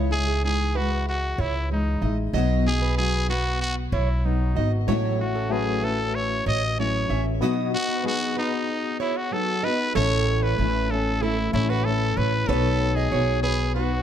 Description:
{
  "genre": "pop",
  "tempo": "95 BPM",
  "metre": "4/4",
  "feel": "straight",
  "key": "unclear",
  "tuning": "A4 = 441 Hz",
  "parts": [
    { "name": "nylon-string guitar", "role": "accompaniment", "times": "0.0-14.0 s", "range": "A2 to C#5", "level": "-28 LUFS", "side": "left 1 dB", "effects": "double-tracked left and right" },
    { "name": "fingerpicked plugged-in steel-string acoustic guitar", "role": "arpeggios", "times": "0.0-13.9 s", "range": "G#4 to E5", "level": "-31 LUFS", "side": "right 7 dB", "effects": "ping-pong delay" },
    { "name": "upright bass", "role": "bass", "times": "0.0-14.0 s", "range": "G#1 to C#2", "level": "-25 LUFS", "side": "equal", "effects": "none" },
    { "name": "growling trumpet", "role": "melody", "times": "0.1-14.0 s", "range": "D#4 to D#5", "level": "-27 LUFS", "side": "equal", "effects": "none" },
    { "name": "reed electric piano", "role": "accompaniment", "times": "4.9-14.0 s", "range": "A3 to D#5", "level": "-31 LUFS", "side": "left 8 dB", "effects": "fast tremolo" }
  ],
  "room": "light reverb",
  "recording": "none",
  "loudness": "-21 LUFS",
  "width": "side -9 dB against mid",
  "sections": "0.0-10.0 A section; 10.0-14.0 B section",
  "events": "none",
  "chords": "0.0 C#madd9; 2.3 B; 4.9 A6; 7.4 B; 10.0 A; 12.5 Badd9"
}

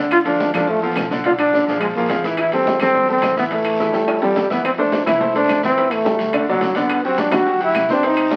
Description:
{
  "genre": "latin, salsa",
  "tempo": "212 BPM",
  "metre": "4/4",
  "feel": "straight",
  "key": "A minor",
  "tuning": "A4 = 440 Hz",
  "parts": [
    { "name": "bright grand piano", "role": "accompaniment", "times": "0.0-8.4 s", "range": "C3 to E5", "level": "-24 LUFS", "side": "equal", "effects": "none" },
    { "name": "upright bass", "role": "bass", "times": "0.0-8.4 s", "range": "G1 to F2", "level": "-39 LUFS", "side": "equal", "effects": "none" },
    { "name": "bright trombone", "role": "melody", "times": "0.1-8.4 s", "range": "F#3 to F#4", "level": "-20 LUFS", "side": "equal", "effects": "none" },
    { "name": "bongos", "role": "percussion", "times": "0.1-8.4 s", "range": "none", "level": "-36 LUFS", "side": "equal", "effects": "none" },
    { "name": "claves", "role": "percussion", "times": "0.1-8.3 s", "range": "none", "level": "-34 LUFS", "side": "equal", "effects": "none" },
    { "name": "congas", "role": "percussion", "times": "0.1-8.4 s", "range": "none", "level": "-30 LUFS", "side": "equal", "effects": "none" },
    { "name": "guiro", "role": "percussion", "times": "0.1-8.4 s", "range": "none", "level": "-39 LUFS", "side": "equal", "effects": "none" },
    { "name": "timbales", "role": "percussion", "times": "0.1-8.3 s", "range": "none", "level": "-31 LUFS", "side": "equal", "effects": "none" }
  ],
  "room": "moderate studio reverb, RT60 0.7 s",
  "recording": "very old 78 rpm record, vinyl crackle",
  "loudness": "-18 LUFS",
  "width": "mono",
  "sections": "0.0-4.6 A section; 4.6-8.4 B section",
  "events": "drum fill 3.9-4.6",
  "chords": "0.1 Dm; 1.2 Bdim; 1.8 Bb5; 2.4 Am7; 4.6 Fmaj7; 5.8 A5; 6.3 D; 6.9 G5"
}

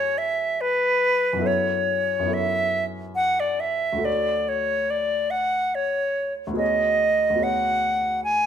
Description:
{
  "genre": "classical, impressionist duo for flute and grand piano",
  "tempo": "71 BPM",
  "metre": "3/4",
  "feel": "rubato",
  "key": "unclear",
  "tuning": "A4 = 441 Hz",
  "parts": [
    { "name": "bright silver concert flute", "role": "melody", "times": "0.0-8.5 s", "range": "B4 to G#5", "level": "-21 LUFS", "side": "equal", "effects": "none" },
    { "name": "warm grand piano", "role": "accompaniment", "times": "0.0-8.5 s", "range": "D2 to C#5", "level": "-29 LUFS", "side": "equal", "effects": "none" }
  ],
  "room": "moderate stone room reverb, RT60 1.0 s",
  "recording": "none",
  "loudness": "-20 LUFS",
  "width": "side -8 dB against mid",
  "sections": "0.0-8.5 A section",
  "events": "none",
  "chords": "0.0 F#m9; 1.5 A69/F#; 4.1 Dmaj7; 6.6 B69/D"
}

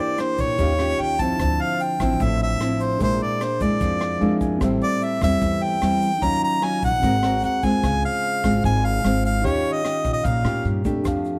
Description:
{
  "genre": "bossa nova",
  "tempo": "149 BPM",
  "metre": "4/4",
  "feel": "straight",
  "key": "unclear",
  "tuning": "A4 = 442 Hz",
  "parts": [
    { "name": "clear harmonica", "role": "melody", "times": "0.0-10.7 s", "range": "C5 to Bb5", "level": "-26 LUFS", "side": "equal", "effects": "none" },
    { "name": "nylon-string guitar", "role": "accompaniment", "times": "0.0-11.4 s", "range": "Ab2 to Bb4", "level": "-26 LUFS", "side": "equal", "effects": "none" },
    { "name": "tine electric piano", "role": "accompaniment", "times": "0.0-11.4 s", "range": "C4 to Ab5", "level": "-33 LUFS", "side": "equal", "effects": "none" },
    { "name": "vintage brush drum kit", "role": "drums", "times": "0.2-11.3 s", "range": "hi-hat, kick drum, rim click", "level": "-33 LUFS", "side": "equal", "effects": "none" },
    { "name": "tube shaker", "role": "percussion", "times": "0.2-11.4 s", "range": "none", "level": "-53 LUFS", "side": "equal", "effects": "none" },
    { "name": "upright bass", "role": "bass", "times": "0.4-11.4 s", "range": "Ab1 to Bb2", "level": "-28 LUFS", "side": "equal", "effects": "none" }
  ],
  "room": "light reverb",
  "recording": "none",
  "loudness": "-21 LUFS",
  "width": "mono",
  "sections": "0.0-11.1 A section",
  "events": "tine electric piano fill 4.0-4.6",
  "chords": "0.0 Em7b5; 0.6 Eb9; 1.4 Dm9; 3.0 Bb7#11; 4.6 Am7; 6.2 Ebm9; 7.0 Ab9; 7.8 Dbmaj7; 9.4 Eb9"
}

